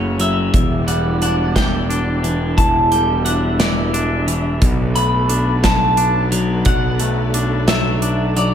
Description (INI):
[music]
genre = post-rock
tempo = 59 BPM (dotted quarters)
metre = 6/8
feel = straight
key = E minor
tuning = A4 = 439 Hz
[part]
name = clean electric guitar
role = melody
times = 0.0-8.5 s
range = C#5 to B5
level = -21 LUFS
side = right 1 dB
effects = spring reverb, slapback echo
[part]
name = dark studio string section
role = sustained chords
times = 0.0-8.5 s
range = E3 to E5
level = -30 LUFS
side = right 1 dB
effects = none
[part]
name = twangy electric guitar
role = arpeggios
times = 0.0-8.5 s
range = E2 to D4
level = -21 LUFS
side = left 2 dB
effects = slapback echo
[part]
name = fuzz picked electric bass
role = bass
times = 0.0-8.5 s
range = E1 to B1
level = -19 LUFS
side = equal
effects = overdrive
[part]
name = big rock drum kit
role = drums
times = 0.2-8.5 s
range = hi-hat, kick drum, snare drum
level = -19 LUFS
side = equal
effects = none
[sound]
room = light reverb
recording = none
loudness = -14 LUFS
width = side -9 dB against mid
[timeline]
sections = 0.0-8.5 A section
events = none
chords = 0.0 F#m7; 0.5 Em7; 4.6 Bm7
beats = | 0.54 1.56 | 2.58 3.60 | 4.62 5.64 | 6.66 7.69